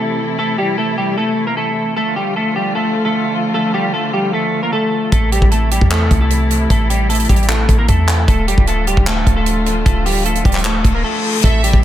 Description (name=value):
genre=hip hop, trap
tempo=152 BPM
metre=4/4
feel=half-time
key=unclear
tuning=A4 = 440 Hz
part: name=clean electric guitar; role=melody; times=0.0-11.8 s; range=G3 to Bb4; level=-17 LUFS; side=equal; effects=analog chorus, dub echo
part: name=muted studio string section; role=sustained chords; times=0.0-11.8 s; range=C3 to F4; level=-23 LUFS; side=equal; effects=none
part: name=clean 808-style bass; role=bass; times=5.1-11.8 s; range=D1 to E2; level=-16 LUFS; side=equal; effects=none
part: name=tight funk drum kit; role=drums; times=5.1-11.8 s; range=handclaps, hi-hat, kick drum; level=-16 LUFS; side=equal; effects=none
part: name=reverse cymbal and impact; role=sound effects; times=10.8-11.8 s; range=none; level=-22 LUFS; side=left 3 dB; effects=none
part: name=warm studio violin section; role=second line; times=11.4-11.8 s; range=E5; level=-21 LUFS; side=right 1 dB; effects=none
room=light reverb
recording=echo-heavy mix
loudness=-13 LUFS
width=side -12 dB against mid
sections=0.0-11.4 A section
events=reverse cymbal 10.8-11.4; impact 11.4-11.8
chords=0.0 Am; 2.0 Dm; 5.1 Am; 8.3 Dm